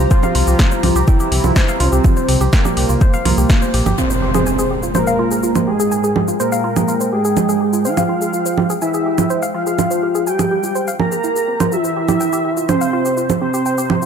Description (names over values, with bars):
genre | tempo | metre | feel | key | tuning
melodic techno | 124 BPM | 4/4 | straight | F harmonic minor | A4 = 438 Hz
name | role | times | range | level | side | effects
dark analog pad | sustained chords | 0.0-14.1 s | F3 to G5 | -31 LUFS | right 1 dB | none
woody wave-folded pluck | arpeggios | 0.0-14.1 s | C4 to Ab5 | -22 LUFS | equal | chorus, sidechain pumping, tape echo
dark detuned saw bass | bass | 0.0-3.9 s | G1 to C2 | -16 LUFS | left 1 dB | sidechain pumping
warbly tape-like pad | texture | 0.0-14.1 s | Ab3 to C6 | -27 LUFS | left 1 dB | chorus, built-in reverb, phaser, sidechain pumping
fat analog lead | melody | 0.1-14.0 s | Ab3 to Bb4 | -20 LUFS | right 1 dB | wide subtle chorus, sidechain pumping, tape echo
deep house drum kit | drums | 0.1-14.1 s | congas, hi-hat, shaker, snare drum | -20 LUFS | right 4 dB | overdrive, sidechain pumping on perc, sidechain pumping on hats
electronic kick drum | drums | 0.1-3.6 s | none | -13 LUFS | equal | overdrive
soft supersaw | second line | 4.0-14.0 s | Ab4 to Bb5 | -22 LUFS | left 1 dB | sidechain pumping, low-pass filter, tape echo
impact | sound effects | 4.0-5.9 s | none | -23 LUFS | left 1 dB | none
room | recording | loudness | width
light reverb | none | -14 LUFS | side -7 dB against mid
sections
0.0-4.0 A section; 4.0-14.1 B section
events
band accent 3.5; impact 4.0-5.9; filter sweep on supersaw synth 4.0-14.1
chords
0.0 Csus4; 4.0 Fmadd9; 11.7 Csus4